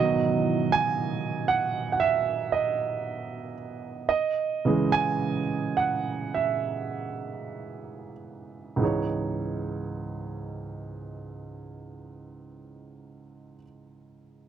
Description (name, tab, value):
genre	pop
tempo	46-60 BPM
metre	4/4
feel	straight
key	C# minor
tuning	A4 = 440 Hz
part	clear baby grand piano	accompaniment	0.0-14.5 s	C#2 to G#5	-26 LUFS	right 5 dB	none
room	light reverb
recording	none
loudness	-25 LUFS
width	side -9 dB against mid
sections	0.0-8.8 A section; 8.8-14.0 B section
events	slowing down 0.0-8.8; grand piano solo 0.0-8.8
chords	0.0 B; 4.1 C#m; 8.8 C#madd9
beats	0.98 2.00 3.04 | 4.11 5.21 6.35 7.55 | 8.81 10.11 11.41 12.71